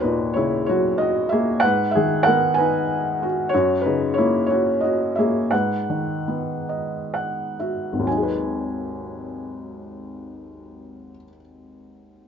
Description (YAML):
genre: classical, lyrical solo piano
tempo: 40-64 BPM (dotted quarters)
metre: 6/8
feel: rubato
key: G# minor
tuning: A4 = 440 Hz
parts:
  - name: felt-muted upright piano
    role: solo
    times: 0.0-12.3 s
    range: G#1 to G#5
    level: -20 LUFS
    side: equal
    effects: none
room: moderate studio reverb, RT60 0.5 s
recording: nothing above 7.5 kHz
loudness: -19 LUFS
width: side -7 dB against mid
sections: 0.0-8.1 A section; 8.1-12.3 B section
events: slowing down 3.5-8.1; felt piano fill 6.7-8.1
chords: 0.0 D#m7; 1.6 G#m7; 3.5 F#add9; 5.5 G#m7